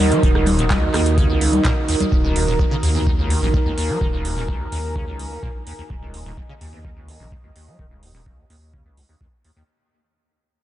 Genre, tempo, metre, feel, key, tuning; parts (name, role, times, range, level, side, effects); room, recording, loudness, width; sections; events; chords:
acid house; 127 BPM; 4/4; straight; Eb minor; A4 = 440 Hz
warm analog pad; sustained chords; 0.0-9.7 s; Eb3 to Eb5; -25 LUFS; right 2 dB; chorus, sidechain pumping
liquid acid bass; riff; 0.0-9.6 s; Eb1 to Gb3; -24 LUFS; equal; lush chorus, sidechain pumping, diffuse ambient delay
booming analog drum machine; drums; 0.0-9.5 s; congas, handclaps, hi-hat, rim click; -25 LUFS; left 2 dB
soft brush drum kit; drums; 0.0-2.0 s; hi-hat, snare drum; -39 LUFS; left 3 dB
deep dark ambient pad; texture; 0.0-9.7 s; Eb4 to Eb6; -27 LUFS; right 4 dB; chorus, built-in reverb, sidechain pumping
saturated sub bass; bass; 0.2-9.0 s; Eb1 to Eb2; -24 LUFS; equal; sidechain pumping
electronic kick drum; drums; 0.2-9.3 s; -21 LUFS; equal
light reverb; nothing above 10.5 kHz; -17 LUFS; side -13 dB against mid
0.0-9.7 A section
fade-out 0.0-9.7
0.0 Ebm